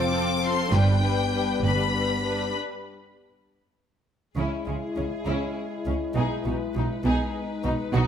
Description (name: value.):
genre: cinematic.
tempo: 67 BPM (dotted quarters).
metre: 6/8.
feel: straight.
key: C# minor from 4.4 s.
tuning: A4 = 442 Hz.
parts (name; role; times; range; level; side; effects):
rich symphonic violin section; melody; 0.0-8.1 s; G#4 to D6; -31 LUFS; left 5 dB; none.
warm symphonic violin section; second line; 0.0-8.1 s; G#3 to C5; -33 LUFS; left 3 dB; none.
dark symphonic viola section; accompaniment; 0.0-8.1 s; G3 to F4; -34 LUFS; equal; none.
mellow French horn section; sustained chords; 0.0-8.1 s; F3 to E4; -30 LUFS; left 3 dB; none.
dark studio double bass section; bass; 0.0-8.0 s; F1 to C#2; -30 LUFS; right 3 dB; none.
warm symphonic cello section; bass; 0.0-8.0 s; F2 to C#3; -28 LUFS; right 2 dB; none.
room: moderate recital hall reverb, RT60 1.5 s.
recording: none.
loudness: -23 LUFS.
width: side -8 dB against mid.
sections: 0.0-4.4 A section; 4.4-8.1 B section.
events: break 2.5-4.4.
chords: 0.0 F; 0.7 G; 2.5 N.C.; 4.4 C#m; 6.2 G#m/B.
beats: | 0.73 1.64 | 2.55 3.46 | 4.38 5.28 | 6.17 7.05 | 7.94.